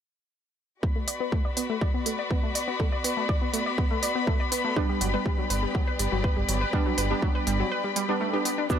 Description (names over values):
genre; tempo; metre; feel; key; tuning
melodic techno; 122 BPM; 4/4; straight; B minor; A4 = 445 Hz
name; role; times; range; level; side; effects
rich studio string section; sustained chords; 0.8-8.8 s; B3 to B5; -30 LUFS; left 3 dB; vintage 12-bit sampler grit, sidechain pumping
analog pluck; arpeggios; 0.8-8.8 s; F#3 to D5; -31 LUFS; left 1 dB; chorus, sidechain pumping, dub echo
electronic kick drum; drums; 0.8-8.8 s; none; -27 LUFS; equal; none
electronic hi-hat and shaker; drums; 1.1-8.8 s; none; -29 LUFS; equal; none
synth brass stab; stabs; 4.8-8.8 s; F#3 to D4; -31 LUFS; right 4 dB; chorus, sidechain pumping, dub echo
round analog bass; bass; 5.0-7.6 s; G1; -28 LUFS; equal; tube saturation, sidechain pumping
room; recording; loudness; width
light reverb; none; -24 LUFS; side -8 dB against mid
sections
0.8-8.7 A section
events
filter sweep on synth pluck 0.8-8.7; kick drops out 7.7-8.7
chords
0.8 Bm; 4.8 G